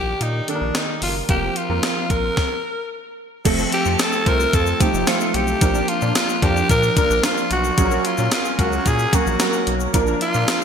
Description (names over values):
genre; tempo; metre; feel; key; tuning
1980s-style pop; 111 BPM; 4/4; straight; unclear; A4 = 438 Hz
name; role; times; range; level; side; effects
raspy alto saxophone; melody; 0.0-10.6 s; D4 to Bb4; -22 LUFS; left 1 dB; ping-pong delay
warm concert grand piano; accompaniment; 0.0-10.6 s; Eb3 to Bb4; -24 LUFS; right 3 dB; analog chorus
rubbery square bass; bass; 0.0-10.4 s; F1 to Bb2; -24 LUFS; equal; none
clean 12-bit digital drum machine; drums; 0.2-10.6 s; crash cymbal, hi-hat, kick drum, snare drum, tambourine; -21 LUFS; equal; gated reverb
chorused pulse-width pad; sustained chords; 3.5-10.6 s; F3 to D4; -28 LUFS; equal; none
tube shaker; percussion; 3.5-10.6 s; none; -34 LUFS; left 11 dB; none
funky polysynth comp; stabs; 3.6-10.5 s; F3 to C5; -30 LUFS; left 1 dB; chorus, ping-pong delay
room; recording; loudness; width
moderate lush hall reverb, RT60 1.6 s; bright 1980s-style digital production; -17 LUFS; side -7 dB against mid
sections
0.0-3.5 A section; 3.5-10.6 B section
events
stop 2.4-3.5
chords
0.0 Ebmaj7/Bb; 1.3 Fsus4; 3.5 F; 5.6 Bb; 7.8 Gb/Bb; 9.9 Bb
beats
0.21 0.75 | 1.29 1.83 2.37 2.91 | 3.45 3.99 4.54 5.08 | 5.62 6.16 6.70 7.24 | 7.78 8.32 8.86 9.40 | 9.94 10.48